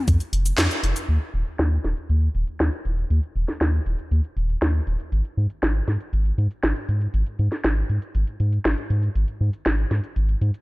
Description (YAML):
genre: italo disco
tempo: 119 BPM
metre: 4/4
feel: straight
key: unclear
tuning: A4 = 441 Hz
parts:
  - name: round analog bass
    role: bass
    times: 0.1-10.5 s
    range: Eb1 to Ab2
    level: -21 LUFS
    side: equal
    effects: none
  - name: house drum kit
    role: drums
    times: 0.1-10.6 s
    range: cabasa, handclaps, hi-hat, snare drum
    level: -25 LUFS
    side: equal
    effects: overdrive, low-pass filter on hats, low-pass filter on perc, low-pass filter on snare, low-pass filter on toms
room: digital ambience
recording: dry, gritty hardware recording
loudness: -21 LUFS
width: side -22 dB against mid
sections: 0.0-1.1 A section; 1.1-10.6 B section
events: band accent 0.6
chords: none